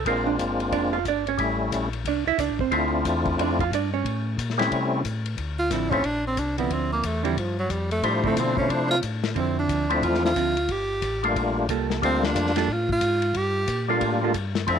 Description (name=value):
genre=soul jazz organ trio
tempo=181 BPM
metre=4/4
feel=swing 62% on 8ths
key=D minor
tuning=A4 = 439 Hz
part: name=hollow-body jazz guitar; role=accompaniment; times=0.0-14.3 s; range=D3 to F5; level=-27 LUFS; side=right 12 dB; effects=none
part: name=mellow tonewheel organ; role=bass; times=0.0-14.8 s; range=F1 to B#2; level=-29 LUFS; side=left 1 dB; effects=slow rotary speaker, tube saturation
part: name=percussive tonewheel organ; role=melody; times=0.1-14.8 s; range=F3 to C5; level=-24 LUFS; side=left 2 dB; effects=overdrive, chorus vibrato, stopped rotary speaker
part: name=warm soul drum kit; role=drums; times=0.1-14.8 s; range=hi-hat, kick drum, ride cymbal, snare drum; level=-32 LUFS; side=left 6 dB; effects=none
part: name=warm tenor saxophone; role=melody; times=5.6-14.8 s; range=F3 to G4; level=-25 LUFS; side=right 1 dB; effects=tape echo
room=light reverb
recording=1960s-style stereo with parts hard left and right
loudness=-22 LUFS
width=side -7 dB against mid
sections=0.0-5.4 A section; 5.4-14.8 A section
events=hollow-body jazz guitar solo 0.0-5.4; tenor saxophone solo 5.4-14.8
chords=0.1 Bb7; 1.4 A7#9; 2.7 Dm9; 4.0 A7#9; 5.4 Dm9; 10.7 Gm9